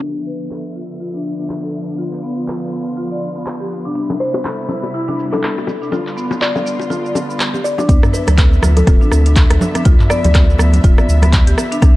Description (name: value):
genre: afro house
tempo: 122 BPM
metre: 4/4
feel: swing 58% on 16ths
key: D dorian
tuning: A4 = 441 Hz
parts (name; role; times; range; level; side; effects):
- muted studio string section; sustained chords; 0.0-12.0 s; C3 to E5; -25 LUFS; right 1 dB; sidechain pumping, low-pass filter
- marimba with hard mallets; arpeggios; 0.0-11.9 s; B3 to D5; -23 LUFS; left 1 dB; sidechain pumping, low-pass filter, dub echo
- afro-pop drum kit; drums; 0.0-11.9 s; handclaps, hi-hat, rim click, shaker, toms; -21 LUFS; equal; studio reverb
- bongos; percussion; 4.1-7.9 s; none; -23 LUFS; left 3 dB; none
- buzzing kalimba; melody; 4.2-10.3 s; A4 to D5; -23 LUFS; left 2 dB; dub echo
- warm sub bass; bass; 7.9-11.9 s; D1 to D2; -12 LUFS; equal; sidechain pumping
- electronic kick drum; drums; 7.9-11.9 s; none; -11 LUFS; equal; studio reverb
- congas; percussion; 7.9-11.9 s; none; -22 LUFS; right 1 dB; none
room: small room ambience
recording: dark, warm production, low-pass filter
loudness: -13 LUFS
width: side -18 dB against mid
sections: 0.0-7.9 A section; 7.9-12.0 B section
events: filter sweep on marimba 0.0-7.9; filter sweep on string section 0.0-7.9; filter sweep 0.0-7.9; drop 7.9-12.0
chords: 0.0 Dm69; 4.0 Cmaj7; 5.9 G7; 7.9 Dm69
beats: | 0.02 0.51 1.00 1.50 | 1.99 2.48 2.97 3.46 | 3.95 4.45 4.94 5.43 | 5.92 6.41 6.91 7.40 | 7.89 8.38 8.87 9.36 | 9.86 10.35 10.84 11.33 | 11.82